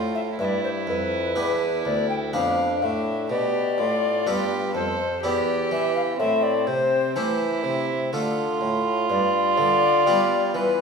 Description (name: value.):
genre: classical, baroque-style sonata movement with continuo.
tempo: 62 BPM.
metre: 3/4.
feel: straight.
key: unclear.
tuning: A4 = 440 Hz.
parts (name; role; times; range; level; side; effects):
rich violin; second line; 0.0-10.8 s; C4 to A4; -26 LUFS; right 5 dB; none.
harpsichord; accompaniment; 0.0-10.8 s; D2 to A4; -28 LUFS; left 1 dB; none.
warm bassoon; bass; 0.0-10.8 s; D2 to G3; -27 LUFS; right 2 dB; none.
alto recorder; melody; 0.1-10.8 s; B4 to G5; -25 LUFS; left 5 dB; none.
room: wet recital hall reverb, RT60 1.3 s.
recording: heard from further back in the room.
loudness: -20 LUFS.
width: side -5 dB against mid.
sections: 0.0-10.8 A section.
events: none.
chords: 0.4 G; 3.3 Bm7b5; 5.2 Em; 6.2 Am7; 8.1 Dm; 9.1 G7.